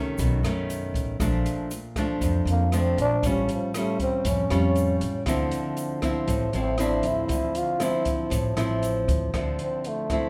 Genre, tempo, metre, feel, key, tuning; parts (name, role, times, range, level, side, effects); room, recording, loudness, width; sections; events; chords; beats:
bossa nova; 118 BPM; 4/4; straight; D minor; A4 = 439 Hz
nylon-string guitar; accompaniment; 0.0-10.3 s; F2 to E#4; -29 LUFS; equal
upright bass; bass; 0.2-9.6 s; A1 to F#2; -29 LUFS; equal
open jazz drum kit; drums; 0.2-10.2 s; hi-hat, kick drum, rim click; -34 LUFS; equal
egg shaker; percussion; 0.2-9.3 s; -47 LUFS; equal
growling trombone; melody; 2.5-10.3 s; E#3 to F4; -30 LUFS; equal
light reverb; -25 LUFS; mono
0.0-9.3 A section
trombone solo 0.0-9.3
0.2 B9; 1.2 Bbmaj7; 3.2 Aaug7; 5.3 Dm9
0.18 0.69 | 1.20 1.71 2.21 2.72 | 3.23 3.74 4.25 4.76 | 5.26 5.77 6.28 6.79 | 7.30 7.81 8.32 8.83 | 9.34 9.85